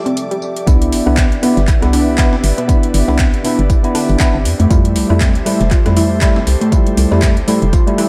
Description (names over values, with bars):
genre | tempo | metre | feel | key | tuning
deep house | 119 BPM | 4/4 | swing 57% on 16ths | C major | A4 = 440 Hz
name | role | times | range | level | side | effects
airy breathy pad | sustained chords | 0.0-8.1 s | F3 to E5 | -27 LUFS | equal | chorus, vintage 12-bit sampler grit, sidechain pumping
tine electric piano | stabs | 0.0-8.1 s | F3 to E4 | -19 LUFS | equal | overdrive, sidechain pumping, delay
bright studio violin section | texture | 0.0-0.7 s | D6 | -39 LUFS | equal | sidechain pumping
warbly dusty pluck | arpeggios | 0.1-8.1 s | A3 to G4 | -23 LUFS | equal | chorus, sidechain pumping, delay
breakbeat sampler-style drum kit | drums | 0.1-8.1 s | hi-hat, snare drum, tambourine | -34 LUFS | equal | none
deep house drum kit | drums | 0.1-8.1 s | handclaps, hi-hat, rim click | -26 LUFS | equal | overdrive
hollow knocking FM bass | bass | 0.7-7.8 s | F1 to F2 | -18 LUFS | equal | sidechain pumping
electronic kick drum | drums | 0.7-7.8 s | none | -15 LUFS | equal | overdrive
room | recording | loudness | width
light reverb, digital ambience | none | -13 LUFS | mono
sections
0.7-8.1 A section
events
drop 0.7-8.1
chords
0.0 Fmaj9; 0.7 Cmaj9; 4.5 Fmaj9